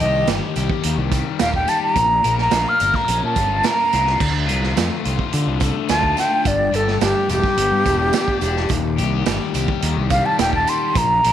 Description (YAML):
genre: psychedelic rock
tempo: 107 BPM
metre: 4/4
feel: straight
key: unclear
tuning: A4 = 440 Hz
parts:
  - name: mellow concert flute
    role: melody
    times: 0.0-11.3 s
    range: G4 to F6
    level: -18 LUFS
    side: right 1 dB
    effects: slapback echo
  - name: crunchy overdriven guitar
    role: riff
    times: 0.0-11.3 s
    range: D2 to Bb4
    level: -24 LUFS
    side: left 11 dB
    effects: phaser
  - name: fuzz fingered electric bass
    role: bass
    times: 0.0-11.3 s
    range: Eb1 to D3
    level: -23 LUFS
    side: equal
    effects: overdrive
  - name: vintage drum kit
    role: drums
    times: 0.0-11.3 s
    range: crash cymbal, hi-hat, kick drum, snare drum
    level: -23 LUFS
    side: right 5 dB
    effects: none
  - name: tambourine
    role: percussion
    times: 0.3-11.1 s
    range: none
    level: -36 LUFS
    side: right 11 dB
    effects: none
room: light reverb, studio reverb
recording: 1960s-style stereo with parts hard left and right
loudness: -16 LUFS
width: side -10 dB against mid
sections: 0.0-11.3 A section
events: flute solo 0.0-11.3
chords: 0.0 Eb; 2.0 Bbm; 4.2 Dm; 6.5 G; 8.7 Eb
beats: 0.28 0.84 1.40 | 1.96 2.52 3.09 3.65 | 4.21 4.77 5.33 5.89 | 6.45 7.01 7.58 8.14 | 8.70 9.27 9.83 10.39 | 10.96